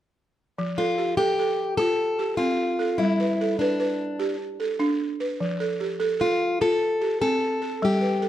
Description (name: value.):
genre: west african traditional.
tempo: 100 BPM (dotted quarters).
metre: 12/8.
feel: straight.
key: F lydian.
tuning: A4 = 440 Hz.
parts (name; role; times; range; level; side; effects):
balafon; arpeggios; 0.6-8.3 s; F3 to B4; -25 LUFS; right 2 dB; none.
fingerpicked plugged-in steel-string acoustic guitar; melody; 0.8-8.3 s; D4 to A4; -24 LUFS; left 2 dB; none.
room: light reverb.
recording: close, detailed microphones.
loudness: -22 LUFS.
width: side -12 dB against mid.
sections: 0.6-8.3 A section.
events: none.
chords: 0.6 F; 3.0 G; 5.4 F.